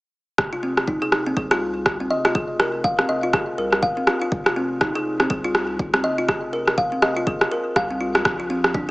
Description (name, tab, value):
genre	afro house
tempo	122 BPM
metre	4/4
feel	swing 59% on 16ths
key	F minor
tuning	A4 = 443 Hz
part	warm sub bass	bass	0.4-8.9 s	Eb1 to C2	-38 LUFS	equal	sidechain pumping
part	electronic kick drum	drums	0.4-8.9 s	none	-27 LUFS	equal	none
part	electronic rim click	drums	0.4-8.7 s	none	-21 LUFS	equal	none
part	kalimba	arpeggios	0.5-8.9 s	C4 to F5	-23 LUFS	equal	sidechain pumping, tape echo
room	moderate plate reverb, RT60 1.7 s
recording	small speaker sound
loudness	-19 LUFS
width	side -20 dB against mid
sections	0.4-8.9 A section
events	none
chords	0.4 Fm; 8.3 Bb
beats	| 0.38 0.88 1.37 1.86 | 2.35 2.84 3.33 3.83 | 4.32 4.81 5.30 5.79 | 6.29 6.78 7.27 7.76 | 8.25 8.74